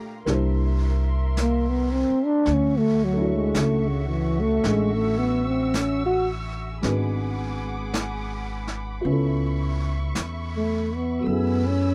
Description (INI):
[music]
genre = jazz ballad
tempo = 55 BPM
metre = 4/4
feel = swing 66% on 8ths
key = unclear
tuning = A4 = 441 Hz
[part]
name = growling trombone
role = melody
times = 0.0-11.9 s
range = C#3 to F#4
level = -25 LUFS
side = equal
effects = none
[part]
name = dark upright piano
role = accompaniment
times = 0.0-11.9 s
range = Bb2 to D5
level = -33 LUFS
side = equal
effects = none
[part]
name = muted studio string section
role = sustained chords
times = 0.0-11.9 s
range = F#4 to E6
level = -38 LUFS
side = equal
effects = none
[part]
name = upright bass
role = bass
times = 0.3-11.9 s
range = G#1 to F#2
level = -28 LUFS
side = equal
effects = none
[part]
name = vintage brush drum kit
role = drums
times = 0.3-11.9 s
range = brushed snare drum, hi-hat, snare drum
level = -36 LUFS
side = equal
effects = none
[sound]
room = little or no reverb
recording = dry, close 1970s-style studio recording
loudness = -24 LUFS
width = mono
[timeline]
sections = 0.0-11.9 A section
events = trombone solo 0.0-11.9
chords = 0.3 C9; 2.5 Dmaj9; 6.8 G#m7b5; 9.0 C#7alt; 11.3 F#m11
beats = 0.27 1.36 | 2.46 3.55 4.64 5.74 | 6.84 7.93 9.04 10.14 | 11.25